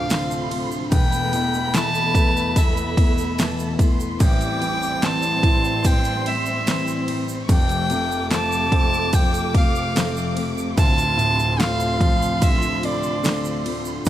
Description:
pop ballad; 73 BPM; 4/4; straight; A4 = 440 Hz
warm violin; melody; 0.0-13.7 s; D5 to A5; -24 LUFS; equal
warm studio violin section; second line; 0.0-14.1 s; A5 to D6; -32 LUFS; right 2 dB
clear grand piano; accompaniment; 0.0-14.1 s; D1 to E4; -27 LUFS; right 2 dB
warm studio string section; sustained chords; 0.0-14.1 s; D2 to C4; -29 LUFS; right 3 dB; stereo widening
picked steel-string acoustic guitar; arpeggios; 0.0-14.1 s; E2 to F4; -28 LUFS; left 8 dB
pop drum kit; drums; 0.1-14.1 s; kick drum, ride cymbal, snare drum; -20 LUFS; equal
egg shaker; percussion; 0.1-14.1 s; -37 LUFS; right 7 dB
studio reverb; -18 LUFS; side -12 dB against mid
0.0-14.1 A section
0.0 Dm7; 0.9 Esus4; 4.2 Am7; 7.5 F; 10.8 Dm7
0.09 | 0.92 1.74 2.56 3.38 | 4.20 5.02 5.85 6.67 | 7.49 8.31 9.13 9.96 | 10.78 11.60 12.42 13.24 | 14.06

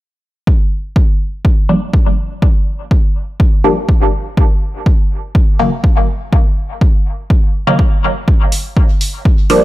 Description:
dub techno; 123 BPM; 4/4; straight; G minor; A4 = 440 Hz
electronic kick drum; drums; 0.5-9.4 s; -11 LUFS; equal; overdrive, small room ambience
filtered dub chord stab; stabs; 1.7-9.6 s; Db3 to D4; -16 LUFS; equal; phaser, cassette tape, sidechain pumping, dub echo
electronic hi-hat; drums; 8.5-9.6 s; -22 LUFS; right 1 dB; overdrive, small room ambience
little or no reverb; echo-heavy mix; -11 LUFS; side -16 dB against mid
0.5-9.6 A section
filter sweep on synth stab 0.5-9.6
0.5 Gm7; 4.4 Ebm7; 8.3 Gm7
| 0.47 0.96 1.45 1.94 | 2.42 2.91 3.40 3.89 | 4.38 4.86 5.35 5.84 | 6.33 6.81 7.30 7.79 | 8.28 8.77 9.25

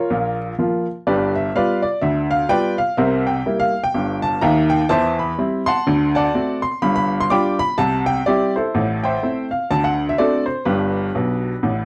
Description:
jazz, stride piano; 125 BPM; 4/4; swing 60% on 8ths; C major from 4.9 s; A4 = 440 Hz
clear upright piano; solo; 0.0-11.8 s; G1 to D6; -19 LUFS; equal; slapback echo
moderate booth ambience, RT60 0.2 s; dry, close 1970s-style studio recording; -19 LUFS; mono
0.0-11.8 A section
upright piano fill 11.2-11.8
0.0 Bb5; 1.1 G7; 3.0 C7; 4.9 C/E; 5.9 D7; 6.8 G7; 7.8 C; 8.7 Am; 9.7 D7; 10.7 G
0.10 0.58 | 1.06 1.54 2.02 2.50 | 2.98 3.46 3.95 4.43 | 4.91 5.39 5.87 6.35 | 6.83 7.31 7.79 8.27 | 8.75 9.23 9.71 10.19 | 10.67 11.15 11.63

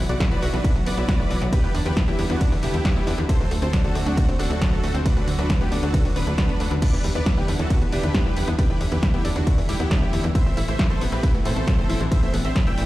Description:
uplifting trance; 136 BPM; 4/4; straight; E minor; A4 = 440 Hz
lush unison pad; sustained chords; 0.0-12.9 s; B2 to F#4; -31 LUFS; right 1 dB; chorus, sidechain pumping
analog pluck; arpeggios; 0.0-12.9 s; D3 to F#4; -30 LUFS; left 2 dB; chorus, sidechain pumping, tape echo
tight sequencer bass; bass; 0.0-12.8 s; D1 to A2; -25 LUFS; equal; sidechain pumping
dense compressed supersaw; melody; 0.1-12.8 s; B3 to G5; -30 LUFS; right 1 dB; sidechain pumping, tape echo
punchy analog drum machine; drums; 0.1-12.9 s; crash cymbal, hi-hat, ride cymbal, snare drum; -30 LUFS; equal; sidechain pumping on hats, sidechain pumping on cymbals
electronic kick drum; drums; 0.2-12.6 s; -22 LUFS; equal
little or no reverb; played on a big sound system in a bare room, stone room reverb; -19 LUFS; side -16 dB against mid
0.0-12.9 A section
0.0 Bsus4; 1.5 Em7; 3.3 D7; 5.1 Bm7/D; 6.8 Em7; 10.3 Amadd9
0.20 0.64 1.08 | 1.53 1.97 2.41 2.85 | 3.29 3.73 4.17 4.62 | 5.06 5.50 5.94 6.38 | 6.82 7.26 7.70 8.14 | 8.59 9.03 9.47 9.91 | 10.35 10.79 11.23 11.67 | 12.12 12.56

